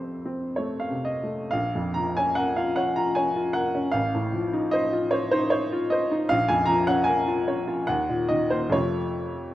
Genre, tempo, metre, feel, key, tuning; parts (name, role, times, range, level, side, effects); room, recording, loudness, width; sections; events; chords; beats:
classical, romantic nocturne for solo piano; 75 BPM; 3/4; uneven beats, rubato; Bb minor; A4 = 440 Hz
clear upright piano; solo; 0.0-9.5 s; A1 to Bb5; -22 LUFS; equal
moderate recital hall reverb, RT60 1.3 s; worn, warbling old tape, cassette tape, warbly pitch drift; -22 LUFS; side -14 dB against mid
0.0-1.5 A section; 1.5-9.5 A section
0.0 F; 1.5 Bbm; 4.0 F7/A; 6.3 Bbm; 7.9 Ebm; 8.7 F
0.56 | 1.53 2.37 3.17 | 3.95 4.73 5.52 | 6.30 7.07 7.88 | 8.73